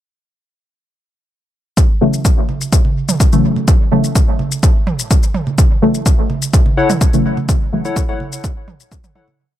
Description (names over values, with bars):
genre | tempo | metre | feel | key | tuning
dub techno | 126 BPM | 4/4 | straight | F# minor | A4 = 440 Hz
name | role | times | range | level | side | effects
electronic kick drum | drums | 1.8-9.0 s | none | -12 LUFS | equal | none
shaker | drums | 1.8-9.1 s | none | -23 LUFS | left 6 dB | none
deep mellow chord stab | stabs | 2.0-7.8 s | C#3 to A3 | -17 LUFS | left 1 dB | chorus, phaser, sidechain pumping, dub echo
electronic congas and toms | percussion | 2.5-9.4 s | none | -22 LUFS | right 4 dB | overdrive, sidechain pumping on perc, sidechain pumping on toms, dub echo
warbly lo-fi synth keys | riff | 6.8-9.3 s | E4 to F#5 | -19 LUFS | left 4 dB | chorus, sidechain pumping, dub echo
room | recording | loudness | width
little or no reverb | none | -12 LUFS | side -12 dB against mid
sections
1.8-9.4 groove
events
fade-out 6.9-9.4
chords
1.8 F#m7